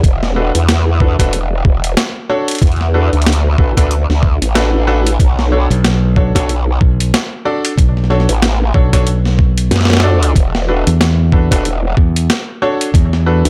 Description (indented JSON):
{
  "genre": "glitch hop",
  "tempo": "93 BPM",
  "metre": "4/4",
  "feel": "swing 58% on 16ths",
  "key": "unclear",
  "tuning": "A4 = 440 Hz",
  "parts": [
    { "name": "growl bass", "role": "bass", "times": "0.0-13.5 s", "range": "E1 to F#2", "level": "-16 LUFS", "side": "equal", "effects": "chorus, tube saturation" },
    { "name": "boom bap sampler-style drum kit", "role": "drums", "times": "0.0-13.5 s", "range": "hi-hat, snare drum", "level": "-20 LUFS", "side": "equal", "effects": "none" },
    { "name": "electronic kick drum", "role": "drums", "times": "0.0-13.1 s", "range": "none", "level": "-14 LUFS", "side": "equal", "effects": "none" },
    { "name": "clear grand piano", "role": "stabs", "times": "0.4-13.4 s", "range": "D4 to D5", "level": "-21 LUFS", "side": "equal", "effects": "sidechain pumping, tape echo" },
    { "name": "modern bright fingered electric bass", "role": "bass", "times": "5.7-13.4 s", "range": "B1 to E2", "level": "-15 LUFS", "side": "equal", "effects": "none" }
  ],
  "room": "digital ambience",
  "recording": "none",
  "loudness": "-13 LUFS",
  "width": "mono",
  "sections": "0.0-13.5 A section",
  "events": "none",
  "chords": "0.0 E7sus4; 5.2 Bm7; 10.4 E7sus4",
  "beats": "| 0.04 0.68 1.33 1.97 | 2.62 3.26 3.91 4.55 | 5.20 5.84 6.49 7.13 | 7.78 8.42 9.07 9.71 | 10.36 11.01 11.65 12.29 | 12.94"
}